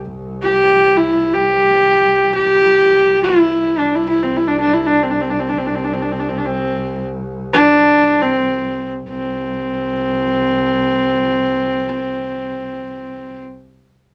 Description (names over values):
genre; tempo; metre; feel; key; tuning
mongolian traditional, Mongolian folk; free time; none; none; C gong mode; A4 = 439 Hz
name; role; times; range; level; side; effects
rich double bass; drone; 0.0-13.4 s; C2; -30 LUFS; equal; none
rich horsehead fiddle; melody; 0.4-13.4 s; C4 to G4; -16 LUFS; equal; none
room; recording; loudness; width
wet studio reverb, RT60 0.6 s; none; -16 LUFS; mono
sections
0.0-9.1 A section; 9.1-13.1 B section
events
slowing down 2.4-9.1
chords
none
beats
free time